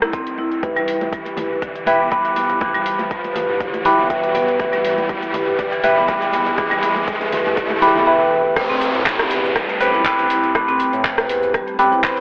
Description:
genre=afro house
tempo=121 BPM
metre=4/4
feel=swing 54% on 16ths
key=A minor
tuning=A4 = 440 Hz
part: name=marimba with medium hard mallets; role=arpeggios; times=0.0-12.2 s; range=D3 to E4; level=-27 LUFS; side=equal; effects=sidechain pumping, tape echo
part: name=deep house drum kit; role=drums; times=0.0-12.2 s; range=crash cymbal, handclaps, hi-hat, rim click, toms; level=-25 LUFS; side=equal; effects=overdrive
part: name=riser and downlifter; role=sound effects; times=0.0-12.2 s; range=none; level=-24 LUFS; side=equal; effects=none
part: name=electronic kick drum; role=drums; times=0.1-12.1 s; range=none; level=-26 LUFS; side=equal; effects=overdrive
part: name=congas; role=percussion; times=0.1-8.0 s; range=none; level=-32 LUFS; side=equal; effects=none
part: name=bright tine electric piano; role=stabs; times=0.6-12.2 s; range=C4 to B4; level=-17 LUFS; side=equal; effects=phaser, sidechain pumping, tape echo
part: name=smooth synth bass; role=bass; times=8.6-12.2 s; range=A1 to A2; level=-29 LUFS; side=equal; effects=tube saturation, sidechain pumping
part: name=egg shaker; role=percussion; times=8.6-12.1 s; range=none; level=-44 LUFS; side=equal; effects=none
room=wet lush hall reverb, RT60 2.3 s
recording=dry, gritty hardware recording, transformer saturation, telephone sound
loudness=-15 LUFS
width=side -29 dB against mid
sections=0.0-8.6 A section; 8.6-12.2 B section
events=build-up 0.0-8.6; riser 0.0-8.1; filter sweep on tine electric piano 0.0-8.6; drum fill 0.6-8.1; drop 8.6-12.2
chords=0.0 Am (rootless); 0.6 Em; 8.6 Am9

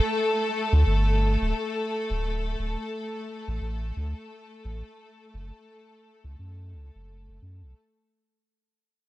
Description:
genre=trip hop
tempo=87 BPM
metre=4/4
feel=swing 60% on 16ths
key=unclear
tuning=A4 = 440 Hz
part: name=bright symphonic string section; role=sustained chords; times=0.0-7.8 s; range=A3 to A4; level=-29 LUFS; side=left 1 dB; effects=vintage 12-bit sampler grit
part: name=warm sub bass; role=bass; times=0.7-7.7 s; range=D1 to F#2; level=-25 LUFS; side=equal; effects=none
room=digital ambience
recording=none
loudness=-24 LUFS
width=side -16 dB against mid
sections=0.0-7.7 A section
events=fade-out 0.0-7.7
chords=0.0 Gsus2; 2.2 D5; 5.0 F#m

